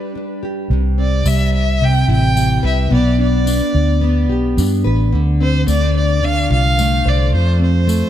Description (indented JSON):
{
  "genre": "acoustic pop",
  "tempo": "109 BPM",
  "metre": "4/4",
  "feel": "swing 60% on 16ths",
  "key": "C major",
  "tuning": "A4 = 439 Hz",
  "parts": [
    { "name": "rich violin", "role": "melody", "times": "0.0-8.1 s", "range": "B4 to G5", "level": "-21 LUFS", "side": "equal", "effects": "analog delay" },
    { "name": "nylon-string guitar", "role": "accompaniment", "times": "0.0-8.1 s", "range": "C3 to C5", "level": "-18 LUFS", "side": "equal", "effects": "double-tracked left and right" },
    { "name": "vintage muted fingered electric bass", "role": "bass", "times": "0.7-8.0 s", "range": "A1 to G2", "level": "-15 LUFS", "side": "equal", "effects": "none" },
    { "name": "tambourine", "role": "percussion", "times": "1.3-8.0 s", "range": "none", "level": "-31 LUFS", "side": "left 7 dB", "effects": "none" }
  ],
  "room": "light reverb",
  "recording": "echo-heavy mix",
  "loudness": "-13 LUFS",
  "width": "side -11 dB against mid",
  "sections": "0.7-8.1 A section",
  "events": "break 0.0-0.7",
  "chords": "0.0 G; 0.7 Cmaj7; 2.9 G/B; 5.1 Dm7; 7.3 F",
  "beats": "0.15 | 0.71 1.26 1.81 2.37 | 2.92 3.47 4.03 4.58 | 5.13 5.68 6.23 6.79 | 7.34 7.89"
}